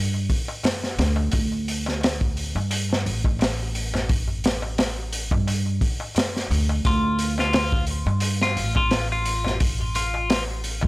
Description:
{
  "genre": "trip hop",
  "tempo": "87 BPM",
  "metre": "4/4",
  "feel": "swing 55% on 16ths",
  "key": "D minor",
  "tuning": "A4 = 440 Hz",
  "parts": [
    { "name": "upright bass", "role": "bass", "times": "0.0-10.9 s", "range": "A1 to G2", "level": "-25 LUFS", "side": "equal", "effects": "tube saturation" },
    { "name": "darbuka", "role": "percussion", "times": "0.1-10.9 s", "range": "none", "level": "-35 LUFS", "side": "left 2 dB", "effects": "none" },
    { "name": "crunchy breakbeat drum kit", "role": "drums", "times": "0.3-10.9 s", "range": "hi-hat, kick drum, snare drum", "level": "-24 LUFS", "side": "equal", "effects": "none" },
    { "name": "clean electric guitar", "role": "melody", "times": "6.9-10.4 s", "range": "F4", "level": "-26 LUFS", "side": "left 2 dB", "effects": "phaser, dub echo" }
  ],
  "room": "small room reverb",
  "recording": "dry, gritty hardware recording, transformer saturation",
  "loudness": "-21 LUFS",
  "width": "side -21 dB against mid",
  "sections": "0.0-10.9 A section",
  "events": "none",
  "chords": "0.0 D5"
}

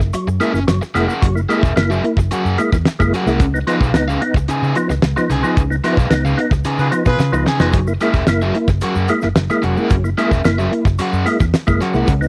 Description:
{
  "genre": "funk",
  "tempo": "111 BPM",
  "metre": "4/4",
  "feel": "straight",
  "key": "unclear",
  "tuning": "A4 = 440 Hz",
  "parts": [
    { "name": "crunchy overdriven guitar", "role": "accompaniment", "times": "0.0-12.1 s", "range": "Db4 to Ab5", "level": "-25 LUFS", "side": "equal", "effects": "plate reverb" },
    { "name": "vintage muted fingered electric bass", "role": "bass", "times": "0.0-12.3 s", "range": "Fb1 to Db3", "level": "-21 LUFS", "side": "equal", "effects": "none" },
    { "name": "damped 70s drum kit", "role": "drums", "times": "0.0-12.2 s", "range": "hi-hat, kick drum, snare drum", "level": "-20 LUFS", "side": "equal", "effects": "none" },
    { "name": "tube shaker", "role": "percussion", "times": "0.0-12.3 s", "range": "none", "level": "-47 LUFS", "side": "equal", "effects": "none" },
    { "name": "percussive tonewheel organ", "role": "stabs", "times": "0.1-12.3 s", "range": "Db3 to Fb4", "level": "-21 LUFS", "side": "equal", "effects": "chorus vibrato, fast rotary speaker, plate reverb" },
    { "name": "clear horn section", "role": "second line", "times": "6.8-7.5 s", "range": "F4 to Cb5", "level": "-23 LUFS", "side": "equal", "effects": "plate reverb" }
  ],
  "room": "light reverb",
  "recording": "home recording on cassette",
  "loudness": "-16 LUFS",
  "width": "mono",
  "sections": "0.0-12.3 A section",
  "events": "band accent 5.6-7.7; drum fill 7.2-7.7",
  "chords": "0.0 Gb9; 3.4 Db9; 7.7 Gb9"
}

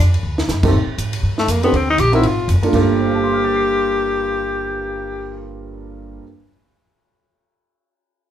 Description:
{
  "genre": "jazz, small-group swing and bop",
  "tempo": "241 BPM",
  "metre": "4/4",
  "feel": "swing 59% on 8ths",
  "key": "G minor",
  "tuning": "A4 = 441 Hz",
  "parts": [
    { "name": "upright bass", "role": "bass", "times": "0.0-6.2 s", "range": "F1 to A2", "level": "-20 LUFS", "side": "equal", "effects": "none" },
    { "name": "compact cocktail drum kit", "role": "drums", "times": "0.1-2.8 s", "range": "crash cymbal, hi-hat, kick drum, ride cymbal, snare drum", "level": "-24 LUFS", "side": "equal", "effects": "none" },
    { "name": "warm upright piano", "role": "accompaniment", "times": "0.6-6.5 s", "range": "G2 to C7", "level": "-21 LUFS", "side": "right 3 dB", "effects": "none" },
    { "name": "warm tenor saxophone", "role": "melody", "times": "1.4-5.5 s", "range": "A3 to G4", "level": "-19 LUFS", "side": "left 3 dB", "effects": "none" }
  ],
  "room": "wet club reverb, RT60 0.6 s",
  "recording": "heard from further back in the room",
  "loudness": "-15 LUFS",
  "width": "side -10 dB against mid",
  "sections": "0.7-2.7 A section; 2.7-4.7 B section",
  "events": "drum fill 0.2",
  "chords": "0.2 D7b9; 0.7 N.C.; 1.2 G5; 1.7 Bb69; 2.2 Fm69; 2.7 Gm7"
}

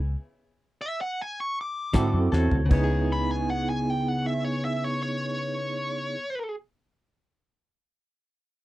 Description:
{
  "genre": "straight-eighth soul blues",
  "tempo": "78 BPM",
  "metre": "4/4",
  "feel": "straight",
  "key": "C# minor",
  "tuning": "A4 = 439 Hz",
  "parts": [
    { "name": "vintage muted fingered electric bass", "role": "bass", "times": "0.0-6.2 s", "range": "C#2 to G#2", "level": "-26 LUFS", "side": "equal", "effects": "none" },
    { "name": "smooth overdriven lead guitar", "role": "melody", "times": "0.8-6.6 s", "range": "C#5 to D6", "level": "-30 LUFS", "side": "equal", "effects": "none" },
    { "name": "overdriven tine electric piano", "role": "accompaniment", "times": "1.9-6.2 s", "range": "B3 to A4", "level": "-29 LUFS", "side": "right 4 dB", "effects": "medium tremolo" },
    { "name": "direct-recorded clean electric guitar", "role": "stabs", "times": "1.9-6.3 s", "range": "C#3 to A4", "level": "-31 LUFS", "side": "left 3 dB", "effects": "spring reverb" },
    { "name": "damped 70s drum kit", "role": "drums", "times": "1.9-2.9 s", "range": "crash cymbal, hi-hat, kick drum, snare drum, toms", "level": "-23 LUFS", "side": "equal", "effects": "none" },
    { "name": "clean lap steel guitar", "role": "second line", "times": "2.3-6.2 s", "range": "C#5", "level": "-41 LUFS", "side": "equal", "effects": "none" }
  ],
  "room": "little or no reverb",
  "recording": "dry, close 1970s-style studio recording",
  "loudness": "-24 LUFS",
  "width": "side -16 dB against mid",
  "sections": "0.0-2.7 A section; 2.7-5.8 B section",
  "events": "stop 0.0-1.9; drum fill 2.3-2.7",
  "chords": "0.0 N.C.; 1.9 D7; 2.7 C#m7"
}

